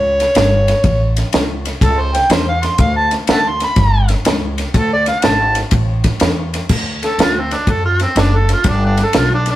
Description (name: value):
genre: electric blues shuffle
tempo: 123 BPM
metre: 4/4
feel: swing 67% on 8ths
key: unclear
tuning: A4 = 442 Hz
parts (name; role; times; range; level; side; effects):
- overdriven harmonica; melody; 0.0-9.6 s; C4 to C6; -16 LUFS; right 1 dB; none
- upright bass; bass; 0.0-9.5 s; F#1 to F#2; -17 LUFS; equal; none
- compact cocktail drum kit; drums; 0.2-9.5 s; crash cymbal, kick drum, ride cymbal, snare drum; -17 LUFS; equal; none
room: moderate stone room reverb, RT60 1.0 s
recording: rough rehearsal-room recording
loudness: -12 LUFS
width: side -14 dB against mid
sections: 0.0-6.7 A section; 6.7-9.6 A section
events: harmonica solo 0.0-6.7, 6.7-9.6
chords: 0.0 A; 2.8 D5; 3.8 G; 4.7 D(b5, no3); 5.7 A5; 6.7 D; 8.6 G